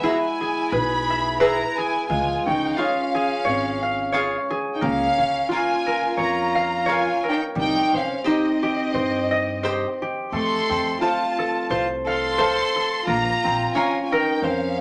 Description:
mexican folk, mariachi; 88 BPM; 4/4; swing 54% on 8ths; A4 = 441 Hz
warm symphonic violin section; melody; 0.0-14.8 s; Eb5 to C6; -28 LUFS; equal
warm violin; second line; 0.0-14.8 s; C4 to A4; -29 LUFS; equal
cavaquinho; accompaniment; 0.0-14.0 s; F4 to C6; -28 LUFS; equal
concert harp; arpeggios; 0.0-14.8 s; G3 to F5; -27 LUFS; equal
upright bass; bass; 0.7-14.8 s; Ab1 to G2; -33 LUFS; equal
wet small room reverb, RT60 0.6 s; -22 LUFS; mono
0.0-14.8 A section
0.0 E; 2.1 Db; 4.8 Bbm/Db; 7.6 Cm; 10.3 F; 13.1 Bbmadd9

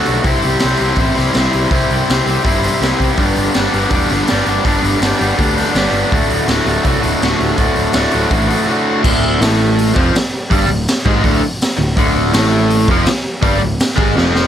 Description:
garage rock duo or trio; 164 BPM; 4/4; straight; D mixolydian; A4 = 438 Hz
raw garage guitar; riff; 0.0-14.5 s; D2 to C5; -14 LUFS; equal; overdrive
fuzz picked electric bass; bass; 0.1-14.5 s; D1 to D2; -19 LUFS; equal; overdrive
raw garage drum kit; drums; 0.1-14.4 s; crash cymbal, hi-hat, kick drum, snare drum; -17 LUFS; equal
little or no reverb; -12 LUFS; side -10 dB against mid
0.0-9.0 A section; 9.0-14.5 B section
drum fill 14.2-14.5
0.2 C; 3.2 G; 6.1 D; 9.0 D5

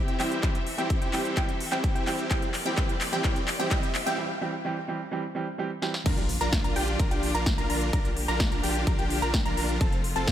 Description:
EDM, festival progressive house; 128 BPM; 4/4; straight; A4 = 439 Hz
bright symphonic string section; sustained chords; 0.0-10.3 s; C3 to E5; -37 LUFS; left 2 dB; sidechain pumping
wide unison pluck; arpeggios; 0.0-10.3 s; G5 to Bb5; -34 LUFS; equal; sidechain pumping, digital delay
supersaw chords; riff; 0.0-10.3 s; C4 to Bb4; -32 LUFS; equal; cassette tape, sidechain pumping, digital delay
riser and impact; sound effects; 1.6-7.9 s; -41 LUFS; equal
big-room dance drum kit; drums; 0.1-10.3 s; crash cymbal, handclaps, hi-hat, snare drum; -33 LUFS; equal; high-pass filter on hats, high-pass filter on snare, high-pass filter on cymbals, high-pass filter on room
clear baby grand piano; accompaniment; 0.2-5.9 s; E3 to G4; -33 LUFS; right 4 dB; sidechain pumping, digital delay
electronic kick drum; drums; 0.4-10.3 s; -27 LUFS; equal
saturated sub bass; bass; 6.1-10.3 s; F1 to Bb1; -32 LUFS; equal; sidechain pumping
light reverb, digital ambience; -24 LUFS; side -11 dB against mid
0.0-6.1 A section; 6.1-10.3 B section
build-up 0.0-6.1; drum fill 0.0-4.2, 5.8; riser 1.6-4.2; break 4.2-6.1; drop 6.1-10.3; impact 6.1-7.9
0.0 C; 2.3 Gm7; 6.1 Bb; 9.8 F

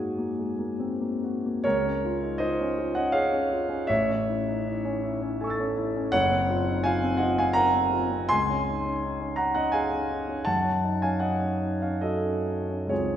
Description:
classical, impressionist solo piano; 64-85 BPM; 3/4; rubato; Db major; A4 = 441 Hz
warm concert grand piano; solo; 0.0-13.2 s; Gb1 to A6; -24 LUFS; equal
wet scoring stage reverb, RT60 1.7 s; heard from further back in the room; -24 LUFS; side -10 dB against mid
0.0-1.6 A section; 1.6-13.2 B section
0.0 Ab13; 1.6 Db6; 3.9 Amaj7; 6.1 Gbmaj7#11; 8.3 Dbmaj9; 10.5 Gbm6

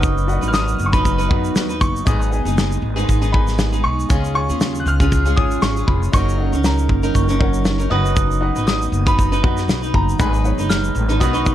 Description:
acoustic pop; 118 BPM; 4/4; swing 55% on 16ths; A4 = 440 Hz
glockenspiel with rubber mallets; second line; 0.0-0.4, 7.1-11.5 s; Db6 to F6; -28 LUFS; right 3 dB
felt-muted upright piano; accompaniment; 0.0-11.5 s; D4 to Ab5; -29 LUFS; left 6 dB
picked steel-string acoustic guitar; accompaniment; 0.0-11.5 s; Ab2 to Cb5; -24 LUFS; right 3 dB
glassy FM pad; sustained chords; 0.0-11.5 s; Db3 to Bb4; -27 LUFS; equal; ensemble chorus, built-in reverb
upright bass; bass; 0.0-11.5 s; F1 to Gb2; -20 LUFS; equal
loose indie drum kit; drums; 0.0-11.5 s; kick drum, shaker, snare drum; -20 LUFS; equal
clear upright piano; melody; 0.5-10.7 s; Bb5 to Gb6; -25 LUFS; left 1 dB; tape echo
studio ambience; dark, warm production; -15 LUFS; side -12 dB against mid
0.0-11.5 A section
0.0 Cb/Gb; 2.1 Abm; 4.1 Db; 6.1 Gb6; 7.9 Cb/Gb; 10.2 Abm

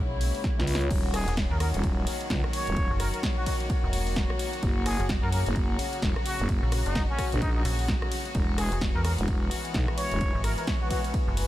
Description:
bass house; 129 BPM; 4/4; swing 60% on 16ths; Eb phrygian; A4 = 441 Hz
dark studio string section; sustained chords; 0.0-11.5 s; Db3 to Gb4; -35 LUFS; left 2 dB; sidechain pumping
metallic FM bass; bass; 0.0-11.5 s; Eb1 to Gb2; -28 LUFS; equal; sidechain pumping
deep dark ambient pad; texture; 0.0-11.5 s; B4 to Cb6; -39 LUFS; left 3 dB; chorus, built-in reverb, sidechain pumping
house drum kit; drums; 0.2-11.5 s; crash cymbal, hi-hat, ride cymbal, rim click, snare drum; -34 LUFS; equal; studio reverb
electronic kick drum; drums; 0.4-11.2 s; -29 LUFS; equal; studio reverb
growling FM bass; bass; 0.6-10.3 s; Eb1 to Db2; -28 LUFS; equal; overdrive, sidechain pumping
trumpet with plunger mute; melody; 1.1-11.0 s; Db4 to Db5; -35 LUFS; equal; diffuse ambient delay
light reverb; -25 LUFS; side -14 dB against mid
0.0-11.5 A section
drum fill 0.4-0.9
0.0 Dbm7; 0.9 Ebm; 4.6 Gb; 8.3 Eadd9

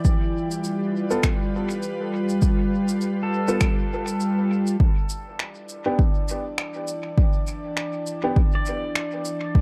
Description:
ambient dub; 101 BPM; 4/4; swing 57% on 16ths; A4 = 444 Hz
soft additive organ-like pad; sustained chords; 0.0-9.6 s; E3 to G5; -29 LUFS; equal; ensemble chorus, built-in reverb
pedal steel guitar; arpeggios; 0.0-4.7, 8.6-9.6 s; A4 to D5; -38 LUFS; equal; dub echo
electronic cabasa and finger snaps; drums; 0.0-9.4 s; -34 LUFS; equal; overdrive, dub echo
electronic kick drum; drums; 0.0-9.6 s; -22 LUFS; equal; overdrive
clear upright piano; stabs; 1.1-8.3 s; B3 to A4; -31 LUFS; equal; dub echo
drifting glass-harmonics texture; texture; 5.3-9.6 s; D4 to D5; -35 LUFS; equal; chorus, built-in reverb
light reverb, digital ambience; dark, warm production; -24 LUFS; mono
0.0-4.8 A section; 4.8-9.6 A section
filter sweep on pedal steel guitar 0.0-4.8; fade-in on ambient pad 4.8-9.6
0.0 G7; 4.8 Em7

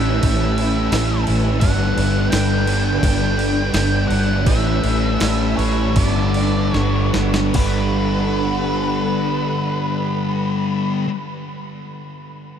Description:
rock, shoegaze and dream pop; 73-86 BPM; 4/4; straight; G lydian; A4 = 441 Hz
octave-fuzz lead guitar; melody; 0.0-10.9 s; B4 to G5; -26 LUFS; right 1 dB; distortion, analog delay
string machine, violas; sustained chords; 0.0-10.9 s; G3 to B5; -27 LUFS; equal; phaser, ensemble chorus
crunchy overdriven guitar; riff; 0.0-11.1 s; G2 to A3; -25 LUFS; equal
electric guitar through a small old amp; riff; 0.0-11.1 s; G2 to E4; -26 LUFS; right 8 dB; reverse reverb
thick fuzz guitar; riff; 0.0-11.1 s; G2 to A3; -24 LUFS; left 6 dB; distortion, analog chorus
vintage muted fingered electric bass; bass; 0.0-10.9 s; G1 to A1; -21 LUFS; equal
clean 12-bit digital drum machine; drums; 0.2-7.7 s; crash cymbal, kick drum, snare drum; -24 LUFS; equal; overdrive
moderate huge ambient reverb, RT60 8.2 s; dreamy mix soaked in reverb; -16 LUFS; side -8 dB against mid
0.0-7.6 A section; 7.6-10.8 B section
slowing down 1.6-7.6; drum fill 6.7-7.6
0.0 A7; 1.6 Gmaj7; 4.5 A7; 6.0 Gmaj7

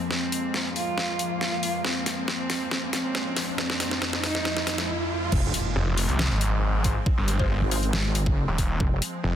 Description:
heavy wobble dubstep; 138 BPM; 4/4; half-time; F minor; A4 = 439 Hz
dark cello; melody; 0.0-4.8 s; C4 to F4; -30 LUFS; right 2 dB; dub echo
evolving wavetable pad; sustained chords; 0.0-9.4 s; F2 to C4; -32 LUFS; left 1 dB; ensemble chorus, built-in reverb, sidechain pumping
riser and impact; sound effects; 1.3-7.1 s; -34 LUFS; right 1 dB
dubstep drum kit; drums; 0.1-9.1 s; crash cymbal, hi-hat, snare drum; -29 LUFS; equal; overdrive, high-pass filter on hats, high-pass filter on snare, high-pass filter on cymbals
wobble bass; bass; 5.3-9.0 s; F1 to Ab1; -25 LUFS; equal; chorus, overdrive
electronic kick drum; drums; 5.3-8.9 s; -24 LUFS; equal; overdrive
snarling distorted saw bass; bass; 5.8-9.4 s; Eb1 to C2; -24 LUFS; equal; overdrive
orchestra-hit-like synth stab; stabs; 6.8-7.8 s; Ab3 to C5; -36 LUFS; left 3 dB; built-in reverb, phaser, dub echo
light reverb; dense, heavily limited modern master; -23 LUFS; side -10 dB against mid
0.0-5.3 A section; 5.3-9.4 B section
build-up 0.0-5.3; drum fill 0.0-4.9; filter sweep on ambient pad 0.0-5.3; riser 1.3-5.3; drop 5.3-9.4; impact 5.3-7.1
0.0 Fm

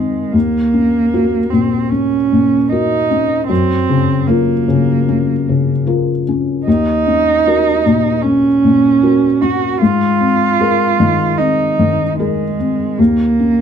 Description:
neoclassical piano and strings; 76 BPM; 4/4; rubato; Eb dorian; A4 = 440 Hz
muted cello; second line; 0.0-13.6 s; Ab3 to Gb4; -15 LUFS; right 6 dB
felt-muted upright piano; accompaniment; 0.0-13.6 s; Eb2 to Bb4; -14 LUFS; left 4 dB
moderate studio reverb, RT60 0.6 s; -12 LUFS; side -8 dB against mid
0.0-13.6 A section
0.3 Ebm7; 3.5 Gbmaj7; 6.7 Ebm7; 9.8 Abadd9; 13.0 Eb7(no3)

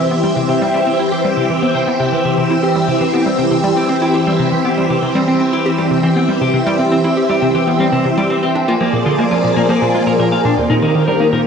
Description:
ambient, sequencer-driven space music; 119 BPM; 4/4; straight; C major; A4 = 440 Hz
phased string machine; sustained chords; 0.0-11.5 s; Eb3 to E5; -15 LUFS; equal; ensemble chorus, phaser, cassette tape, shimmer reverb
clean electric guitar; arpeggios; 0.0-11.4 s; Bb3 to G5; -21 LUFS; left 2 dB; auto-pan, cassette tape, tape echo, shimmer reverb
hollow square pluck; riff; 0.0-11.4 s; Eb2 to G4; -19 LUFS; right 1 dB; chorus, cassette tape, tape echo, shimmer reverb
bubbling stepped-filter texture; texture; 0.0-11.5 s; C4 to C5; -26 LUFS; right 1 dB; chorus, built-in reverb, cassette tape, shimmer reverb
analog drone; bass; 10.6-11.5 s; barely audible
wet spring reverb, RT60 1.7 s, digital ambience; home recording on cassette; -12 LUFS; side -6 dB against mid
0.0-10.6 A section
fade-in on clean electric guitar 0.0-10.6; fade-in on synth texture 0.0-10.6
0.0 C; 8.6 Bb7; 10.6 Eb

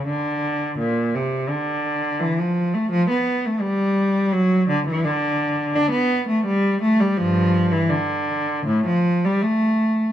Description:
classical, baroque-style suite movement for unaccompanied cello; 84 BPM; 4/4; rubato; A4 = 440 Hz
rich cello; solo; 0.0-10.1 s; G2 to D4; -18 LUFS; equal
moderate stone room reverb, RT60 1.4 s; -18 LUFS; side -11 dB against mid
0.0-10.1 A section

